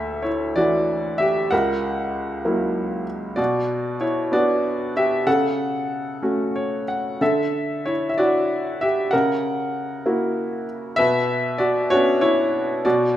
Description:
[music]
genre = classical, lyrical solo piano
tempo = 64 BPM (dotted quarters)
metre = 6/8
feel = rubato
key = B minor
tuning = A4 = 439 Hz
[part]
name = bright baby grand piano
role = solo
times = 0.0-13.2 s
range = C#2 to F#5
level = -19 LUFS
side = equal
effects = none
[sound]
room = moderate recital hall reverb, RT60 1.5 s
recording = minimal, uncompressed stereo recording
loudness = -19 LUFS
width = side -12 dB against mid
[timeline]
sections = 0.0-13.2 A section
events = grand piano fill 6.2-7.2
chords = 0.0 Dadd9; 1.5 F#7/C#; 3.4 Bm; 5.3 F#m/C#; 7.2 Dadd9; 9.1 F#7/C#; 11.0 Bmadd9

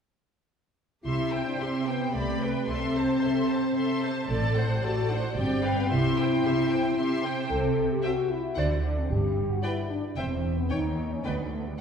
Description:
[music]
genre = quick classical-period movement for symphony orchestra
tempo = 112 BPM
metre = 3/4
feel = rubato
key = C major, G major from 7.5 s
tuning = A4 = 444 Hz
[part]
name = mellow French horn section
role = sustained chords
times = 1.0-11.7 s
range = G3 to A4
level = -28 LUFS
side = left 2 dB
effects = none
[part]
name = rich studio violin section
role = melody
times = 1.1-11.3 s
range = F5 to C6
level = -37 LUFS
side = left 3 dB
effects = none
[part]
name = warm studio violin section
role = second line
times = 1.1-11.3 s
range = B4 to G5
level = -36 LUFS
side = equal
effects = none
[part]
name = warm studio viola section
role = accompaniment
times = 1.1-11.3 s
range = G4 to Db5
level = -36 LUFS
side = right 1 dB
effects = none
[part]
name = dark studio double bass section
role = bass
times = 1.1-11.7 s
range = E1 to Eb2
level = -32 LUFS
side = right 2 dB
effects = none
[part]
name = warm studio cello section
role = bass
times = 1.1-11.7 s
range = D2 to D3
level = -30 LUFS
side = right 2 dB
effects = none
[sound]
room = wet scoring stage reverb, RT60 1.8 s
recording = heard from further back in the room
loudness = -24 LUFS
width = side -7 dB against mid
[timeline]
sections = 1.1-11.8 A section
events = none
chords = 1.1 C; 2.1 G/C; 2.7 Am/C; 4.3 D7/A; 5.4 G7; 5.9 C; 8.6 D7(no3); 9.1 N.C.; 10.2 C/E; 10.7 Eb7(no3); 11.2 G/D (rootless)

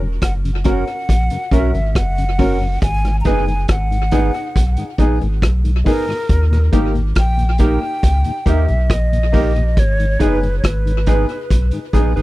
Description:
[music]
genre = roots reggae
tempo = 69 BPM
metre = 4/4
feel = straight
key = G# minor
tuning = A4 = 438 Hz
[part]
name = mellow tonewheel organ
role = accompaniment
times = 0.0-12.2 s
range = D#2 to D#4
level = -23 LUFS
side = left 2 dB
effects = overdrive, chorus vibrato, slow rotary speaker
[part]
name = warm sub bass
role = bass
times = 0.0-12.2 s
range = E1 to D#2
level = -17 LUFS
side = equal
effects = none
[part]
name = breathy mellow silver concert flute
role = melody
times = 0.2-12.0 s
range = A#4 to A#5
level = -24 LUFS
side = equal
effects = tape echo
[part]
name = vintage drum kit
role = drums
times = 0.2-12.2 s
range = hi-hat, kick drum, rim click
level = -18 LUFS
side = equal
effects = none
[part]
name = clear upright piano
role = stabs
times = 0.6-12.1 s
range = A#3 to A#4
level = -23 LUFS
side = left 7 dB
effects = none
[part]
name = mellow electric guitar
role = accompaniment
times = 0.7-12.2 s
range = C#4 to B4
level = -24 LUFS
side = right 8 dB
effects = tape echo
[sound]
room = little or no reverb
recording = none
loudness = -14 LUFS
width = side -18 dB against mid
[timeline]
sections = 0.0-12.2 A section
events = none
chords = 0.0 F#; 2.8 G#m; 6.3 D#; 9.8 G#m

